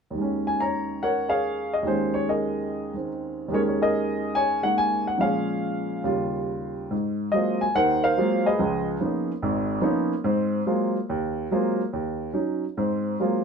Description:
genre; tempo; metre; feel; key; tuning
solo jazz; 143 BPM; 4/4; swing 66% on 8ths, rubato; unclear; A4 = 440 Hz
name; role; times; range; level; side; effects
warm upright piano; solo; 0.1-13.4 s; Ab1 to Bb5; -23 LUFS; equal; none
room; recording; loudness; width
moderate studio reverb, RT60 0.5 s; band playing live in one room; -23 LUFS; side -6 dB against mid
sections
0.2-6.9 A section; 6.9-13.4 B section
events
none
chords
0.2 Eb7sus4; 5.2 Bbm7; 6.0 Eb9; 6.9 Ab13; 8.6 Db13; 10.3 Ab13; 11.9 Ebm7; 12.8 Ab13

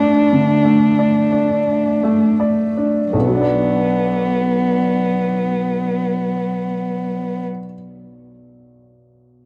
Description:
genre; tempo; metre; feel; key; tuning
neoclassical piano and strings; 42 BPM; 4/4; rubato; B minor; A4 = 440 Hz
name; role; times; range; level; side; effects
dark violin; melody; 0.0-7.4 s; B3 to D4; -22 LUFS; equal; none
warm cello; second line; 0.0-7.4 s; F#3 to A3; -22 LUFS; equal; none
clear upright piano; accompaniment; 0.0-9.5 s; B1 to D5; -21 LUFS; equal; none
room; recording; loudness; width
small room ambience; dry, close 1970s-style studio recording, lossy compression artefacts; -17 LUFS; mono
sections
0.0-3.1 A section; 3.1-8.8 B section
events
slowing down 0.0-3.1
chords
0.0 Gsus2; 3.1 Bm

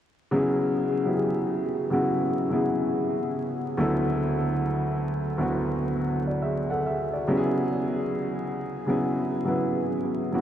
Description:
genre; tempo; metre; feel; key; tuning
hip hop; 69 BPM; 4/4; swing 64% on 16ths; unclear; A4 = 440 Hz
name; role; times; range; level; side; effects
dark upright piano; solo; 0.3-10.4 s; D2 to F#5; -24 LUFS; equal; cassette tape, low-pass filter, ping-pong delay
room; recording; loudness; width
wet huge ambient reverb, RT60 7.5 s; dreamy mix soaked in reverb, vinyl crackle; -24 LUFS; side -10 dB against mid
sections
0.3-7.3 A section; 7.3-10.4 B section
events
none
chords
0.3 C#m7; 3.8 Bm7/D; 7.3 C#m7

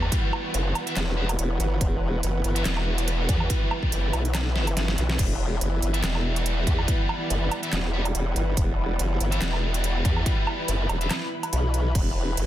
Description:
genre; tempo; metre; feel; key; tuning
heavy wobble dubstep; 142 BPM; 4/4; swing 55% on 16ths, half-time; E minor; A4 = 439 Hz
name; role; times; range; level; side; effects
dark studio string section; sustained chords; 0.0-12.5 s; E3 to B4; -34 LUFS; left 1 dB; sidechain pumping, low-pass filter
distorted electric guitar; stabs; 0.0-11.1 s; G3 to E5; -32 LUFS; equal; overdrive, tape echo
formant-sweep wobble bass; bass; 0.0-12.4 s; E1 to E2; -26 LUFS; equal; chorus, overdrive
dubstep drum kit; drums; 0.0-12.5 s; crash cymbal, handclaps, hi-hat, snare drum, woodblock; -30 LUFS; right 2 dB; small room reverb
airy breathy pad; texture; 0.0-12.5 s; E4 to B5; -34 LUFS; right 1 dB; chorus, sidechain pumping
electronic kick drum; drums; 0.1-12.0 s; none; -24 LUFS; equal; small room reverb
formant-sweep wobble bass; bass; 0.5-12.5 s; E1 to B1; -25 LUFS; equal; chorus, overdrive
room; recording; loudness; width
digital ambience; dense, heavily limited modern master; -22 LUFS; side -13 dB against mid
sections
0.0-12.5 A section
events
drum fill 4.6-5.2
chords
0.0 Emadd9

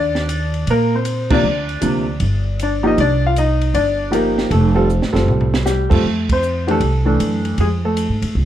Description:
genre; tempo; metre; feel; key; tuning
jazz piano trio; 156 BPM; 4/4; swing 66% on 8ths; unclear; A4 = 436 Hz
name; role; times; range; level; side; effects
warm concert grand piano; melody; 0.0-8.3 s; C3 to F5; -18 LUFS; left 1 dB; plate reverb
upright bass; bass; 0.0-8.4 s; F1 to Bb2; -19 LUFS; right 1 dB; none
compact cocktail drum kit; drums; 0.2-8.4 s; crash cymbal, hi-hat, kick drum, ride cymbal, snare drum, toms; -24 LUFS; right 2 dB; none
room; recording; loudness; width
light reverb; none; -15 LUFS; side -11 dB against mid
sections
0.0-6.0 A section; 6.0-8.4 B section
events
band accent 1.2, 5.8, 6.2; drum fill 4.9-5.7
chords
0.0 Eb5; 1.4 Dm7; 2.2 G5; 3.0 Cm9; 4.5 F; 6.0 F6; 7.6 F(#9)

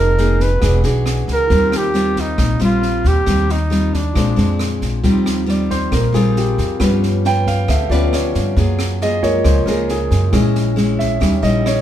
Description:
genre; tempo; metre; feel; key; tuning
bossa nova; 136 BPM; 4/4; straight; Eb major; A4 = 440 Hz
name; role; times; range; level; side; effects
warm flugelhorn; melody; 0.0-4.8 s; D4 to Cb5; -19 LUFS; right 2 dB; none
nylon-string guitar; accompaniment; 0.0-11.8 s; Bb2 to B4; -20 LUFS; left 1 dB; none
warm grand piano; accompaniment; 0.0-11.8 s; Fb3 to G5; -21 LUFS; right 1 dB; none
upright bass; bass; 0.0-11.8 s; E1 to G2; -18 LUFS; equal; none
open jazz drum kit; drums; 0.2-11.8 s; kick drum, rim click, snare drum; -24 LUFS; equal; none
room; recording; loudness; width
moderate studio reverb, RT60 0.9 s; band playing live in one room; -14 LUFS; side -11 dB against mid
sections
0.0-5.0 A section; 5.0-11.8 B section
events
grand piano solo 5.0-11.8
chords
0.0 Fm7; 0.6 E9; 1.5 Eb69; 4.1 Bb9; 5.0 Eb69; 6.8 G7#11; 8.6 Gbmaj9; 10.3 Bbm7b5; 11.2 Eb7b9

